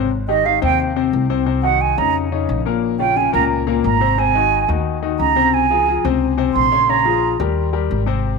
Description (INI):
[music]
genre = jazz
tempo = 177 BPM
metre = 4/4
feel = straight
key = Ab major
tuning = A4 = 440 Hz
[part]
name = clear concert grand piano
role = accompaniment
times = 0.0-8.4 s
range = Bb2 to Db5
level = -20 LUFS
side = left 13 dB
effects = none
[part]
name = upright bass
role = bass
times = 0.0-8.4 s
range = Ab1 to F2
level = -22 LUFS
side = equal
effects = none
[part]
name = hollow concert flute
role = second line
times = 0.3-7.4 s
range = Eb5 to C6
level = -17 LUFS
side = right 9 dB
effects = none
[sound]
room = wet spring reverb, RT60 2.5 s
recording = 1960s-style stereo with parts hard left and right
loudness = -15 LUFS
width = side -4 dB against mid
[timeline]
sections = 0.1-8.4 A section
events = flute solo 0.1-8.4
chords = 0.1 Abmaj7; 1.5 Cdim; 2.1 Bbmadd11; 2.8 Bbm9; 4.2 Ab7; 5.5 Dbmaj7; 6.9 Bbm7; 7.6 Eb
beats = | 0.12 0.46 0.79 1.13 | 1.47 1.81 2.15 2.49 | 2.83 3.17 3.50 3.84 | 4.18 4.52 4.86 5.20 | 5.54 5.87 6.21 6.55 | 6.89 7.23 7.57 7.90 | 8.24